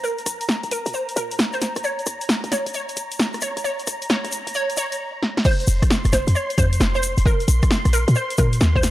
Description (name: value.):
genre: UK garage, two-step garage.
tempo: 133 BPM.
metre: 4/4.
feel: swing 65% on 16ths.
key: unclear.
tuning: A4 = 439 Hz.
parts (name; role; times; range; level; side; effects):
hollow square pluck; melody; 0.0-8.9 s; Bb4 to Db5; -26 LUFS; right 1 dB; ensemble chorus, cassette tape, analog delay.
soft string machine; sustained chords; 0.0-8.9 s; Bb5 to C6; -31 LUFS; equal; ensemble chorus, sidechain pumping.
short 808-style bass; bass; 0.0-8.9 s; Eb1 to Bb2; -19 LUFS; equal; sidechain pumping, high-pass filter.
egg shaker; percussion; 0.0-8.9 s; none; -32 LUFS; left 2 dB; none.
punchy analog drum machine; drums; 0.2-8.9 s; crash cymbal, hi-hat, rim click, snare drum; -23 LUFS; equal; overdrive.
electronic kick drum; drums; 5.5-8.8 s; none; -19 LUFS; equal; overdrive.
room: light reverb, digital ambience.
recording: dry, gritty hardware recording.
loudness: -18 LUFS.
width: side -15 dB against mid.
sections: 0.0-5.5 A section; 5.5-8.9 B section.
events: build-up 0.0-5.5; filter sweep on string machine 0.0-5.5; drum fill 5.2; drop 5.5-8.9.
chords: 0.0 Bbsus4; 1.6 Eb5; 3.4 Db5; 5.5 F5; 7.3 Bbsus2.